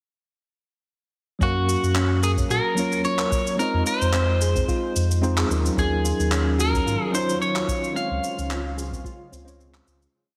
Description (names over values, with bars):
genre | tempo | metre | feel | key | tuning
sunset chillout | 110 BPM | 4/4 | swing 54% on 16ths | unclear | A4 = 440 Hz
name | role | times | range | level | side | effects
electric guitar at the edge of break-up | melody | 1.4-9.6 s | Gb4 to F5 | -28 LUFS | equal | digital delay
mellow tine electric piano | accompaniment | 1.4-10.2 s | Gb3 to F5 | -30 LUFS | equal | none
soft round pluck | arpeggios | 1.4-10.0 s | C4 to C5 | -34 LUFS | equal | subtle chorus, digital delay
warm sub bass | bass | 1.4-10.1 s | Db2 to Bb2 | -26 LUFS | equal | none
electronic cabasa and handclaps | drums | 1.4-10.1 s | none | -33 LUFS | equal | none
electronic kick drum | drums | 1.4-9.2 s | none | -29 LUFS | equal | none
shimmering ambient pad | sustained chords | 6.7-10.1 s | Db3 to F4 | -38 LUFS | equal | chorus, built-in reverb
room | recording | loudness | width
moderate lush hall reverb, RT60 1.9 s, digital ambience | heavily compressed radio sound, multiband compression | -23 LUFS | mono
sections
1.4-10.1 groove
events
fade-out 7.2-10.1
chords
1.4 Gbmaj7; 3.6 Fm7; 5.5 Ebm9; 8.0 Dbmaj7